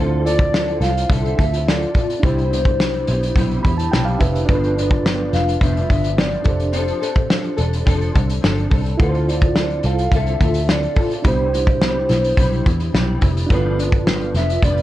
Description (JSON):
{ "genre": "indie pop, bedroom pop", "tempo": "106 BPM", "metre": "4/4", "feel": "straight", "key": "D dorian", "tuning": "A4 = 440 Hz", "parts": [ { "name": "mellow reed electric piano", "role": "accompaniment", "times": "0.0-14.8 s", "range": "D4 to B5", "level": "-26 LUFS", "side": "right 3 dB", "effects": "fast tremolo, cassette tape" }, { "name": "nylon-string guitar", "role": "accompaniment", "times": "0.0-14.8 s", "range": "G2 to A4", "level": "-25 LUFS", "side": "left 2 dB", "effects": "ensemble chorus, vibrato effect" }, { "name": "vintage muted picked electric bass", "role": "bass", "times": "0.0-14.8 s", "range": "E1 to E2", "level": "-21 LUFS", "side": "equal", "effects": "none" }, { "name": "hollow clarinet-like synth lead", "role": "melody", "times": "0.3-14.8 s", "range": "C5 to F5", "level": "-24 LUFS", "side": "equal", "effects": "wide subtle chorus, tape echo" }, { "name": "loose indie drum kit", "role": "drums", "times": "0.3-14.8 s", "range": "hi-hat, kick drum, snare drum", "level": "-19 LUFS", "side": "equal", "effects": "none" } ], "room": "light reverb", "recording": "cassette tape", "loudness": "-15 LUFS", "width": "side -14 dB against mid", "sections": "0.0-14.8 A section", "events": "reed electric piano fill 3.4-4.5", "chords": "0.0 Dm7; 2.2 Cmaj7; 4.5 G7; 6.5 F6; 9.0 Dm7; 11.2 Cmaj7; 13.5 G7" }